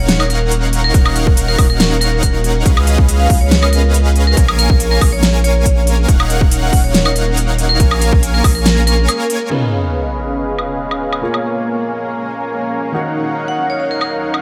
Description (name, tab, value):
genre	future bass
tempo	140 BPM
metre	4/4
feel	half-time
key	Eb minor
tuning	A4 = 440 Hz
part	vibraphone with hard mallets	melody	0.0-9.4, 13.5-14.1 s	Bb4 to Gb5	-22 LUFS	equal	sidechain pumping, tape echo
part	shimmering ambient pad	sustained chords	0.0-14.4 s	Eb2 to Gb4	-30 LUFS	equal	chorus, built-in reverb, sidechain pumping
part	supersaw chords	riff	0.0-14.4 s	Bb3 to Ab5	-22 LUFS	equal	sidechain pumping, low-pass filter
part	saturated sub bass	bass	0.0-9.1 s	Eb1 to Db2	-17 LUFS	equal	sidechain pumping
part	big-room dance drum kit	drums	0.1-11.4, 14.0-14.4 s	crash cymbal, hi-hat, snare drum, woodblock	-20 LUFS	equal	low-pass filter on hats, studio reverb, low-pass filter on cymbals, low-pass filter on perc, low-pass filter on snare
part	electronic kick drum	drums	0.9-8.5 s	none	-14 LUFS	equal	studio reverb
part	felt-muted upright piano	accompaniment	9.5-14.4 s	Bb2 to Db5	-27 LUFS	equal	sidechain pumping, tape echo
part	sub drop	sound effects	9.5-11.2 s	none	-24 LUFS	equal	none
room	little or no reverb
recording	none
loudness	-14 LUFS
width	mono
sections	0.0-9.5 A section; 9.5-14.4 B section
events	drop 0.0-9.5; break 9.1-9.5; impact 9.5-11.2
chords	0.0 Ebm7; 2.7 Db7; 4.4 Bbm7; 6.1 Ebm7; 7.8 Bbm7; 9.5 Db7; 11.2 Bbm7; 12.9 Ebm7